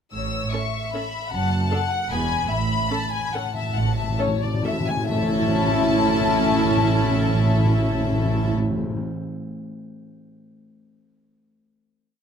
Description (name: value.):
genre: classical, orchestral ballroom waltz.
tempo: 129-164 BPM.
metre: 3/4.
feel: rubato.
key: A major.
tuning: A4 = 439 Hz.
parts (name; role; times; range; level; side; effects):
dark studio violin section; melody; 0.1-8.5 s; F#5 to E6; -28 LUFS; left 5 dB; none.
warm symphonic violin section; second line; 0.1-8.5 s; A4 to A5; -27 LUFS; left 5 dB; none.
dark studio double bass section; bass; 0.1-8.5 s; E1 to A1; -28 LUFS; right 4 dB; none.
warm studio cello section; bass; 0.1-8.5 s; E2 to A2; -28 LUFS; right 4 dB; none.
rich studio viola section; accompaniment; 0.5-8.5 s; B3 to A4; -26 LUFS; equal; none.
timpani; percussion; 2.5-9.0 s; A2; -25 LUFS; left 1 dB; none.
room: light reverb.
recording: close, detailed microphones.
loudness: -20 LUFS.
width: side -7 dB against mid.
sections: 0.1-5.1 A section; 5.1-7.7 final chord.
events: slowing down 1.9-5.1; timpani fill 2.5-5.1.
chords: 0.1 A; 1.3 D/F# (rootless); 2.1 E; 2.5 A.